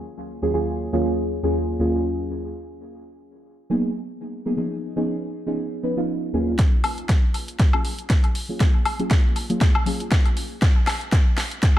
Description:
deep house; 119 BPM; 4/4; swing 55% on 16ths; Eb minor; A4 = 440 Hz
deep mellow chord stab; stabs; 0.4-11.8 s; Eb2 to Cb5; -24 LUFS; equal; chorus, phaser, sidechain pumping, tape echo
deep house drum kit; drums; 6.6-11.8 s; hi-hat, snare drum, woodblock; -27 LUFS; left 1 dB; overdrive, high-pass filter on snare, small room ambience, high-pass filter on hats, high-pass filter on perc, tape echo
electronic kick drum; drums; 6.6-11.7 s; -18 LUFS; equal; overdrive, small room ambience
light reverb, digital ambience; echo-heavy mix; -20 LUFS; side -13 dB against mid
0.0-6.6 A section; 6.6-11.8 B section
build-up 6.6-11.8; drum fill 6.6-11.8; filter sweep on synth stab 6.6-11.8
0.0 Ebm11; 2.6 Abm7; 4.6 Db9; 6.6 Ebm11; 10.6 N.C.

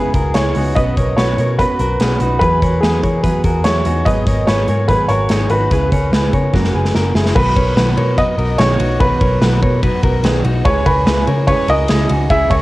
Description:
jangly indie pop; 146 BPM; 4/4; straight; B major; A4 = 440 Hz
warm upright piano; melody; 0.0-12.6 s; G#4 to E5; -18 LUFS; right 1 dB; cassette tape
fingerpicked steel-string acoustic guitar; accompaniment; 0.0-12.6 s; G#2 to B4; -21 LUFS; right 3 dB; cassette tape
direct-recorded clean electric guitar; arpeggios; 0.0-12.6 s; C#4 to C#5; -22 LUFS; left 3 dB; cassette tape
vintage muted picked electric bass; bass; 0.1-12.6 s; F#1 to E3; -18 LUFS; equal
big rock drum kit; drums; 0.1-12.6 s; crash cymbal, hi-hat, kick drum, ride cymbal, snare drum; -18 LUFS; equal; cassette tape
light reverb, studio reverb; home recording on cassette; -12 LUFS; side -18 dB against mid
0.0-7.4 A section; 7.4-12.6 B section
drum fill 6.5-7.4
0.0 C#m7; 0.8 Bsus2; 2.4 Eadd9; 4.1 G#m7; 5.7 C#m7; 6.5 F#add9; 7.4 B; 10.7 C#m

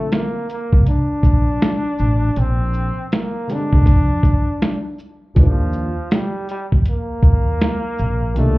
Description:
hip hop, jazz-hop; 80 BPM; 4/4; swing 65% on 16ths; Bb major; A4 = 441 Hz
bright trombone; melody; 0.0-8.6 s; F3 to D4; -23 LUFS; equal
dark upright piano; accompaniment; 0.0-8.6 s; Bb2 to D4; -25 LUFS; left 1 dB
dusty soul sampler-style drum kit; drums; 0.1-8.6 s; hi-hat, kick drum, shaker, snare drum; -16 LUFS; equal
upright bass; bass; 0.7-8.6 s; A1 to F2; -17 LUFS; equal
small room ambience; heard muffled through a wall, club reverb, EQ; -15 LUFS; side -20 dB against mid
0.0-8.6 A section
0.0 Bbmaj7; 2.4 Bb13; 5.4 Ebmaj7

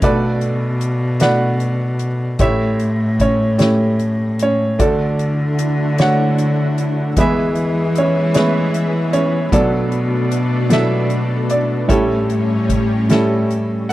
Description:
acoustic folk-pop ballad; 50 BPM (dotted quarters); 6/8; straight; A major; A4 = 440 Hz
clear upright piano; melody; 0.0-13.9 s; A1 to F#5; -18 LUFS; right 2 dB
warm cello; bass; 0.0-13.9 s; A2 to E3; -18 LUFS; equal
soft-mallet drum kit; drums; 0.0-13.9 s; hi-hat, kick drum, snare drum; -20 LUFS; left 1 dB
analog string pad; sustained chords; 5.4-13.9 s; D3 to F#4; -24 LUFS; left 2 dB; ensemble chorus
little or no reverb; dry, close 1970s-style studio recording; -14 LUFS; side -15 dB against mid
0.0-13.9 A section
0.0 Bm7; 2.4 A7; 4.8 Dmaj7; 7.2 E; 9.5 Bm7; 11.9 A7

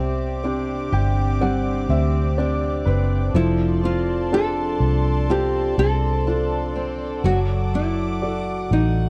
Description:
pop; 62 BPM; 4/4; straight; A4 = 440 Hz
nylon-string guitar; melody; 0.0-9.1 s; D#4 to A4; -27 LUFS; equal
warm concert grand piano; accompaniment; 0.0-9.1 s; C3 to G5; -29 LUFS; equal
warm studio string section; sustained chords; 0.0-9.1 s; C4 to D6; -34 LUFS; equal
fingerpicked steel-string acoustic guitar; arpeggios; 0.0-9.1 s; C3 to A4; -31 LUFS; equal
vintage muted fingered electric bass; bass; 0.0-9.1 s; F1 to D2; -24 LUFS; equal
little or no reverb; dry, close 1970s-style studio recording; -21 LUFS; mono
0.0-9.1 A section
grand piano fill 0.4-3.3
0.0 Csus2; 3.3 F6; 7.2 D/F#

